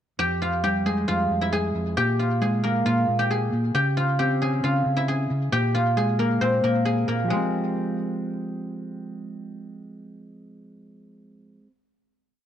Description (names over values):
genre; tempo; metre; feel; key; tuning
hip hop; 135 BPM; 4/4; half-time; F harmonic minor; A4 = 440 Hz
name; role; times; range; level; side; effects
guzheng; melody; 0.2-10.7 s; Ab3 to Ab5; -25 LUFS; left 1 dB; low-pass filter
mellow electric guitar; accompaniment; 0.2-11.7 s; F2 to G4; -25 LUFS; equal; low-pass filter
room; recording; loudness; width
studio ambience; dark, warm production; -21 LUFS; side -10 dB against mid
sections
0.2-7.3 hook; 7.3-10.9 final chord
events
none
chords
0.2 Fmadd9; 2.0 Bb5; 3.7 Dbmaj7; 5.5 Bb5; 7.3 Fmadd9